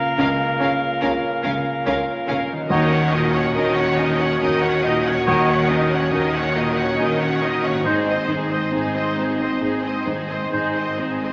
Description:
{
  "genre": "cinematic, emotional film score for orchestra",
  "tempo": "70 BPM",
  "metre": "3/4",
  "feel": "rubato",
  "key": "unclear",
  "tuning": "A4 = 440 Hz",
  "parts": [
    { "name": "mellow hollow concert flute", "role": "second line", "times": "0.0-11.0 s", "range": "Eb5 to Gb5", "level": "-30 LUFS", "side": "equal", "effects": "none" },
    { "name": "warm oboe", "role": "second line", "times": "0.0-10.9 s", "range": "Bb4 to Db5", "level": "-28 LUFS", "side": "equal", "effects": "none" },
    { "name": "warm baby grand piano", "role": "accompaniment", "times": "0.0-11.3 s", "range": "Db2 to Bb4", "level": "-27 LUFS", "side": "equal", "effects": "none" },
    { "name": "dark French horn section", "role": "sustained chords", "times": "0.0-11.3 s", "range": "Bb3 to Gb4", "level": "-28 LUFS", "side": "equal", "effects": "none" },
    { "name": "concert harp", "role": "arpeggios", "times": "0.0-11.3 s", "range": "Ab2 to Bb4", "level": "-36 LUFS", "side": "equal", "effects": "none" },
    { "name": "warm symphonic violin section", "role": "melody", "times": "0.2-11.3 s", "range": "C5 to Gb5", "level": "-30 LUFS", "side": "equal", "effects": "none" },
    { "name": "clear symphonic violin section", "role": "second line", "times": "0.2-11.3 s", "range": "Ab4 to Db5", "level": "-29 LUFS", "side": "equal", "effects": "none" },
    { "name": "clear symphonic viola section", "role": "accompaniment", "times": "0.2-11.3 s", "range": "C4 to Eb4", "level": "-31 LUFS", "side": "equal", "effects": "none" },
    { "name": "bright symphonic cello section", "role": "bass", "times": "0.2-11.3 s", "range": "Ab2 to Eb3", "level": "-30 LUFS", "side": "equal", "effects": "none" },
    { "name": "warm symphonic double bass section", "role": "bass", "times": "0.2-11.3 s", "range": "Ab1 to Eb2", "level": "-34 LUFS", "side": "equal", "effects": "none" }
  ],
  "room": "wet scoring stage reverb, RT60 1.8 s",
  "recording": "nothing above 7.7 kHz",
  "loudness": "-20 LUFS",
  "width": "mono",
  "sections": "0.0-11.3 A section",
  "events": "none",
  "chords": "0.0 Bbm/Db; 2.7 Ebm7; 7.8 Ab"
}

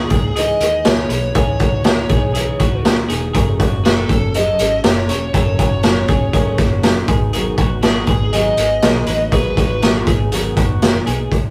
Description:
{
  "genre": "jangly indie pop",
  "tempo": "120 BPM",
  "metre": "4/4",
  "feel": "straight",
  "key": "unclear",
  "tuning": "A4 = 440 Hz",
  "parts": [
    { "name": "lead guitar through a small cranked amp", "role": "melody", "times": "0.0-10.0 s", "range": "G#4 to D#5", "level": "-23 LUFS", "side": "equal", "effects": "overdrive" },
    { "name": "picked steel-string acoustic guitar", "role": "accompaniment", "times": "0.0-11.3 s", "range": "F#2 to D#4", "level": "-28 LUFS", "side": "equal", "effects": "none" },
    { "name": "twelve-string electric guitar", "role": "arpeggios", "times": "0.0-11.3 s", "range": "F#4 to C#5", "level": "-29 LUFS", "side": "equal", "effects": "none" },
    { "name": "vintage muted fingered electric bass", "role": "bass", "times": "0.0-11.5 s", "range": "E1 to D#2", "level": "-26 LUFS", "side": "equal", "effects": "none" },
    { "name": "raw garage drum kit", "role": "drums", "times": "0.1-11.4 s", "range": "hi-hat, kick drum, snare drum", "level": "-18 LUFS", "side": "equal", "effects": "none" }
  ],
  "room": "light reverb",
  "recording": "rough rehearsal-room recording",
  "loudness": "-16 LUFS",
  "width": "mono",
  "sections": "0.0-11.3 A section",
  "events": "none",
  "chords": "0.0 C#madd9; 3.3 F#m; 7.1 G#m7"
}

